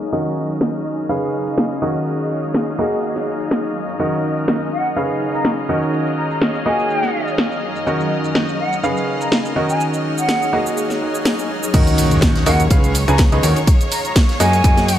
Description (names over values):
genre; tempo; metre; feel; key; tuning
piano house; 124 BPM; 4/4; swing 55% on 16ths; Eb minor; A4 = 440 Hz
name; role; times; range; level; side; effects
bright studio violin section; sustained chords; 0.0-15.0 s; Db5 to F6; -28 LUFS; left 2 dB; sidechain pumping, low-pass filter
clear baby grand piano; riff; 0.0-14.9 s; Db3 to Ab5; -21 LUFS; right 1 dB; vintage 12-bit sampler grit, sidechain pumping, digital delay
house drum kit; drums; 0.0-15.0 s; crash cymbal, finger snaps, hi-hat, shaker, snare drum; -22 LUFS; equal; none
granular cloud pad; texture; 0.0-15.0 s; Eb4 to F5; -25 LUFS; left 1 dB; built-in reverb, sidechain pumping
mellow concert flute; melody; 4.7-15.0 s; Gb5 to Bb5; -23 LUFS; equal; none
fat analog bass; bass; 11.7-15.0 s; Db2 to Gb2; -17 LUFS; equal; sidechain pumping
electronic kick drum; drums; 11.7-14.7 s; none; -14 LUFS; equal; none
loose indie drum kit; drums; 11.7-15.0 s; ride cymbal, snare drum; -31 LUFS; left 2 dB; none
impact; sound effects; 11.8-13.7 s; none; -24 LUFS; equal; none
room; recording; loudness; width
moderate lush hall reverb, RT60 2.5 s; low-pass filter; -15 LUFS; side -11 dB against mid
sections
0.0-11.7 A section; 11.7-15.0 B section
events
filter sweep on violin section 0.0-11.7; filter sweep 0.0-11.7; drop 11.7-15.0; impact 11.7-13.7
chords
0.1 Ebm7; 1.1 Db7; 1.8 Ebm7; 2.8 Gb69; 4.0 Ebm7; 5.0 Db7; 5.7 Ebm7; 6.7 Gb69; 7.9 Ebm7; 8.8 Db7; 9.6 Ebm7; 10.5 Gb69; 11.7 Ebm7; 12.7 Db7; 13.4 Ebm7; 14.4 Gb69